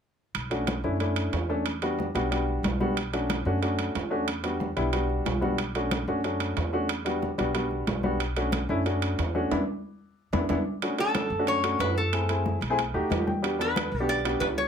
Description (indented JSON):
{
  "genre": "Afro-Cuban jazz",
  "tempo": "183 BPM",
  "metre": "4/4",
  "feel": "straight",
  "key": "B minor",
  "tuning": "A4 = 440 Hz",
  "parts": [
    { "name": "upright bass", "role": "bass", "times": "0.3-14.7 s", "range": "B1 to F#2", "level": "-32 LUFS", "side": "equal", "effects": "none" },
    { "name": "timbales", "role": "percussion", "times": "0.3-14.6 s", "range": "none", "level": "-33 LUFS", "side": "right 7 dB", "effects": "none" },
    { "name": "congas", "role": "percussion", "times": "0.4-14.7 s", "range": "none", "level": "-34 LUFS", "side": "left 2 dB", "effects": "none" },
    { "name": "warm upright piano", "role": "accompaniment", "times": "0.5-14.6 s", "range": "G3 to G5", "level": "-28 LUFS", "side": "left 1 dB", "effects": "none" },
    { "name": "metal-body resonator slide guitar", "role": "melody", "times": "11.0-14.7 s", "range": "A4 to D5", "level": "-28 LUFS", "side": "left 1 dB", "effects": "plate reverb" }
  ],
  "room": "wet club reverb, RT60 0.5 s",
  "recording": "none",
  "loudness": "-25 LUFS",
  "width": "side -7 dB against mid",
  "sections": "0.3-10.8 A section; 10.8-14.7 B section",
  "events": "band accent 9.5-10.8; upright piano fill 12.9-13.4",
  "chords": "0.3 Bm9; 1.7 Em9; 3.0 Bm9; 4.3 Em9; 5.6 Bm9; 6.9 Em9; 8.2 Bm9; 9.5 E5; 10.8 Bm9 (rootless); 12.1 F#m7b5; 12.8 B7b13; 13.4 Em9"
}